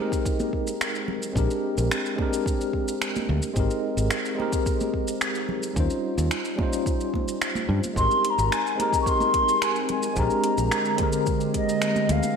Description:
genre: sunset chillout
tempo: 109 BPM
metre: 4/4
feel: straight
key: Ab major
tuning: A4 = 441 Hz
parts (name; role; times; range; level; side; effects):
- tine electric piano; accompaniment; 0.0-12.4 s; D3 to C5; -27 LUFS; left 1 dB; medium stereo tremolo, auto-pan, tape echo
- deep house drum kit; drums; 0.1-12.3 s; finger snaps, hi-hat, shaker; -30 LUFS; equal; small room reverb
- electronic kick drum; drums; 0.1-11.7 s; none; -28 LUFS; equal; small room reverb
- congas; percussion; 0.4-12.3 s; none; -35 LUFS; right 4 dB; none
- fingered electric bass; bass; 1.4-12.2 s; Ab1 to G2; -24 LUFS; equal; none
- mellow wooden flute; melody; 8.0-12.4 s; Eb5 to Db6; -24 LUFS; left 1 dB; tape echo
- ethereal airy pad; sustained chords; 9.5-12.4 s; D3 to G4; -31 LUFS; equal; ensemble chorus, built-in reverb, phaser
room: wet lush hall reverb, RT60 1.5 s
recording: dreamy mix soaked in reverb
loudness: -22 LUFS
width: side -6 dB against mid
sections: 0.0-12.4 A section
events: none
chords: 0.0 Abmaj9; 1.4 Bb13; 3.6 Abmaj9; 5.8 Eb13; 8.0 Abmaj9; 10.2 Bb13

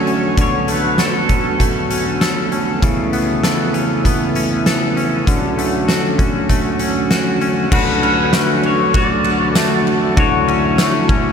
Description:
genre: dream pop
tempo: 98 BPM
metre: 4/4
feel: straight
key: D major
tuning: A4 = 440 Hz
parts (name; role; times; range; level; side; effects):
- pedal steel guitar; melody; 0.0-2.5, 7.7-11.3 s; A4 to D5; -21 LUFS; left 1 dB; wide subtle chorus, diffuse ambient delay, shimmer reverb
- mellow tonewheel organ; sustained chords; 0.0-11.3 s; C#3 to F#4; -18 LUFS; right 1 dB; slow rotary speaker, shimmer reverb
- twangy electric guitar; arpeggios; 0.0-11.3 s; C#3 to A4; -20 LUFS; left 3 dB; analog chorus, diffuse ambient delay, shimmer reverb
- oversized low-tuned drum kit; drums; 0.1-11.2 s; crash cymbal, hi-hat, kick drum, ride cymbal, snare drum, tambourine; -18 LUFS; equal; none
room: wet huge ambient reverb, RT60 8.3 s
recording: dreamy mix soaked in reverb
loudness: -13 LUFS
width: side -7 dB against mid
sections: 0.0-7.7 A section; 7.7-11.3 B section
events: none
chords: 0.0 Dmaj7; 2.8 Aadd9/C#; 5.3 Dmaj7

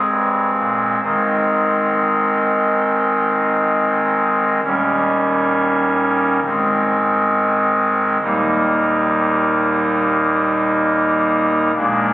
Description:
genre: classical, chorale-style piece for pipe organ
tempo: 68 BPM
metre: 4/4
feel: rubato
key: Ab major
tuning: A4 = 440 Hz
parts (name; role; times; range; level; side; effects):
- pipe organ, soft reed; solo; 0.0-12.1 s; Eb1 to Eb4; -14 LUFS; equal; none
room: wet church reverb, RT60 3.1 s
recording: recorded on a phone in the room, studio reverb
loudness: -14 LUFS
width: side -16 dB against mid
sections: 0.0-1.0 A section; 1.0-12.1 B section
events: none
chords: 0.0 Ab; 4.6 Eb7; 6.4 Ab; 8.2 Eb

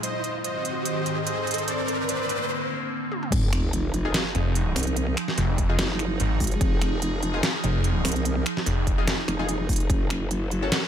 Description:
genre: heavy wobble dubstep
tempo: 146 BPM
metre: 4/4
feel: swing 54% on 16ths, half-time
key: F phrygian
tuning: A4 = 440 Hz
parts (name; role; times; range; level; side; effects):
- soft supersaw; melody; 0.0-2.4 s; C5 to Eb5; -30 LUFS; equal; digital delay
- evolving wavetable pad; sustained chords; 0.0-10.9 s; Ab2 to A4; -30 LUFS; right 2 dB; phaser, built-in reverb, sidechain pumping
- dubstep drum kit; drums; 0.0-10.8 s; crash cymbal, finger snaps, hi-hat, snare drum, toms; -28 LUFS; equal; high-pass filter on hats, small room ambience, high-pass filter on toms, high-pass filter on cymbals, high-pass filter on snare
- riser and sub drop; sound effects; 0.0-5.0 s; none; -31 LUFS; equal; none
- growl bass; bass; 3.3-10.7 s; F1 to C2; -26 LUFS; equal; chorus, overdrive
- electronic kick drum; drums; 3.3-10.0 s; none; -25 LUFS; equal; small room ambience
- orchestra-hit-like synth stab; stabs; 4.0-10.8 s; Db4 to A4; -33 LUFS; left 3 dB; built-in reverb, digital delay
- snarling distorted saw bass; bass; 4.3-9.1 s; F1 to Ab1; -24 LUFS; equal; distortion, overdrive
room: little or no reverb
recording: none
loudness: -23 LUFS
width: side -9 dB against mid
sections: 0.0-3.3 A section; 3.3-10.9 B section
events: build-up 0.0-3.3; riser 0.0-2.5; break 2.5-3.3; drum fill 3.1; drop 3.3-10.9; impact 3.3-5.0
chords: 0.0 Ab; 1.7 Bbadd9; 3.3 Fm7; 9.9 Gbm

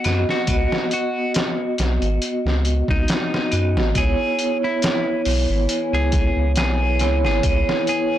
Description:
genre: trip hop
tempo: 69 BPM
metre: 4/4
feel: swing 54% on 16ths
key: C# minor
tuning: A4 = 440 Hz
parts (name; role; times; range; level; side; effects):
- clean electric guitar; melody; 0.0-8.2 s; D#4 to G#4; -26 LUFS; left 1 dB; tape echo
- vibraphone with hard mallets; accompaniment; 0.0-8.2 s; B3 to D#5; -23 LUFS; right 2 dB; tremolo, tape echo
- trip hop sampler-style drum kit; drums; 0.0-8.1 s; hi-hat, kick drum, snare drum; -23 LUFS; equal; none
- warm sub bass; bass; 0.1-7.6 s; G#1 to F#2; -20 LUFS; equal; none
- deep dark ambient pad; sustained chords; 5.1-8.2 s; E4 to G#5; -29 LUFS; left 4 dB; chorus, built-in reverb
room: light reverb, digital ambience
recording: blown-out, overdriven recording, overdrive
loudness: -18 LUFS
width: side -12 dB against mid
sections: 0.0-4.0 A section; 4.0-8.2 B section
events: none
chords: 0.0 B; 4.0 C#m7

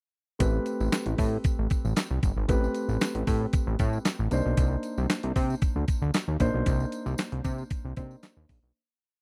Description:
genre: early-eighties boogie funk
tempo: 115 BPM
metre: 4/4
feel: straight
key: A minor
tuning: A4 = 439 Hz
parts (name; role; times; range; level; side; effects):
- dark grand piano; accompaniment; 0.4-8.8 s; A3 to C5; -35 LUFS; equal; none
- fat analog bass; bass; 0.4-8.7 s; G1 to C3; -30 LUFS; equal; none
- detuned 8-bit digital drum machine; drums; 0.4-8.6 s; handclaps, hi-hat, kick drum, snare drum; -30 LUFS; equal; none
- tambourine; percussion; 0.4-8.6 s; none; -49 LUFS; equal; none
room: little or no reverb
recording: dry, close 1970s-style studio recording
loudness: -27 LUFS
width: mono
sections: 0.4-8.8 verse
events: fade-out 6.7-8.8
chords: 0.4 Am9; 4.3 Cm9

